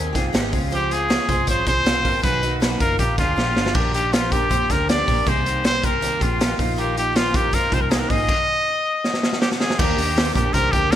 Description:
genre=jangly indie pop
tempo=159 BPM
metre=4/4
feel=straight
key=unclear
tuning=A4 = 440 Hz
part: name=picked plugged-in steel-string acoustic guitar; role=accompaniment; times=0.0-11.0 s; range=Bb2 to G4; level=-29 LUFS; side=right 6 dB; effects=lush chorus
part: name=electric guitar through a small old amp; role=arpeggios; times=0.0-11.0 s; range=Bb3 to Db5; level=-28 LUFS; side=left 3 dB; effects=analog chorus, digital delay
part: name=vintage muted fingered electric bass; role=bass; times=0.0-11.0 s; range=F#1 to Eb2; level=-27 LUFS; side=equal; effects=none
part: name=raw garage drum kit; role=drums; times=0.2-11.0 s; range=crash cymbal, hi-hat, kick drum, snare drum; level=-21 LUFS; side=equal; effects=gated reverb
part: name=bright trumpet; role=melody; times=0.7-11.0 s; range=F4 to Eb5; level=-22 LUFS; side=equal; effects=digital delay
room=light reverb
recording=bright 1980s-style digital production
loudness=-17 LUFS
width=side -11 dB against mid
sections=0.0-3.8 A section; 3.8-9.8 B section; 9.8-11.0 C section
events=drum fill 3.4-3.8, 9.0-9.8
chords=0.0 Abmaj7; 0.5 Dbmaj7; 2.2 Bmaj7; 3.0 Bb7; 3.8 Bb6; 5.3 Cm7; 6.6 Bbsus4; 9.8 Ebmaj7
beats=0.34 | 0.72 1.10 1.48 1.86 | 2.24 2.62 2.99 3.37 | 3.75 4.13 4.51 4.89 | 5.26 5.64 6.02 6.40 | 6.78 7.15 7.53 7.91 | 8.29 8.66 9.04 9.41 | 9.79 10.17 10.54 10.92

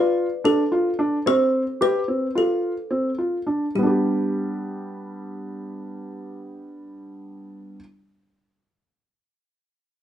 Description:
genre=contemporary instrumental, chamber music in an uneven meter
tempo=215 BPM (eighths)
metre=9/8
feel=straight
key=G mixolydian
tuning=A4 = 442 Hz
part: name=kalimba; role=melody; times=0.0-7.7 s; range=G4 to C5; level=-25 LUFS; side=left 2 dB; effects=none
part: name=felt-muted upright piano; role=arpeggios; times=0.0-7.8 s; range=G3 to G4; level=-23 LUFS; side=right 1 dB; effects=none
room=moderate studio reverb, RT60 0.7 s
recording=dark, warm production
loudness=-20 LUFS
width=side -10 dB against mid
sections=0.0-3.7 A section; 3.7-6.3 B section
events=slowing down 0.0-3.7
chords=0.0 Dm; 1.3 C5; 2.4 F; 3.7 G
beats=0.17 0.44 0.71 0.98 | 1.25 1.53 1.80 2.08 2.35 2.63 2.91 3.19 3.46 | 3.75 4.03 4.31 4.59 4.87 5.15 5.43 5.71 6.00

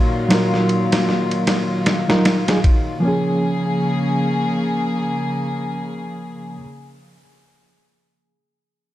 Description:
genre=trip hop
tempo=77 BPM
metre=4/4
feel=swing 59% on 16ths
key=Bb minor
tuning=A4 = 441 Hz
part: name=warm chamber string section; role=sustained chords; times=0.0-6.6 s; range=Bb2 to Ab4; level=-22 LUFS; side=left 2 dB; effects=vintage 12-bit sampler grit, low-pass filter
part: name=reed electric piano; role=accompaniment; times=0.3-6.6 s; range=F3 to Bb4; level=-21 LUFS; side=right 1 dB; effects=tremolo, low-pass filter, tape echo
part: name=boom bap sampler-style drum kit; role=drums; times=0.3-2.9 s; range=kick drum, ride cymbal, snare drum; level=-18 LUFS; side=equal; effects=none
room=light reverb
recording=dark, warm production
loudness=-16 LUFS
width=side -14 dB against mid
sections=0.0-3.0 A section; 3.0-6.2 B section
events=filter sweep on reed electric piano 0.0-3.0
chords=0.0 Ebmadd9/Bb; 3.0 Bbm7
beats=0.69 1.47 2.25 | 3.03 3.81 4.59 5.37

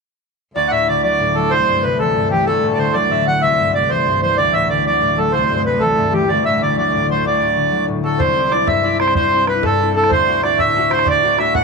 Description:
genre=celtic folk, Celtic jig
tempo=126 BPM (dotted quarters)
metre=6/8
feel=straight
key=D mixolydian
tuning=A4 = 440 Hz
part: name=accordion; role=melody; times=0.6-11.6 s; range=G4 to F#5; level=-16 LUFS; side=right 5 dB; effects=none
part: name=accordion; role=second line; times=0.6-11.6 s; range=G4 to F#5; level=-21 LUFS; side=left 11 dB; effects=none
part: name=concert harp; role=accompaniment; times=0.6-11.6 s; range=C2 to F#4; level=-20 LUFS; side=left 4 dB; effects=none
part: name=rich cello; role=drone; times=0.6-8.2 s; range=D2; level=-26 LUFS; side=right 3 dB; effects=none
part: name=bodhran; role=percussion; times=8.2-11.6 s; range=none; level=-24 LUFS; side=right 5 dB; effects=none
room=moderate spring reverb, RT60 2.8 s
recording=1960s-style stereo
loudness=-14 LUFS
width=side -4 dB against mid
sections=0.6-8.2 A section; 8.2-11.6 B section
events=none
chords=0.6 D; 1.5 C; 2.5 D; 3.4 C; 4.4 D; 5.3 C; 6.3 D; 8.2 Cadd9; 10.1 D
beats=| 0.56 1.03 | 1.51 1.99 | 2.46 2.94 | 3.42 3.90 | 4.38 4.86 | 5.33 5.81 | 6.29 6.77 | 7.25 7.72 | 8.20 8.68 | 9.16 9.64 | 10.12 10.59 | 11.07 11.55

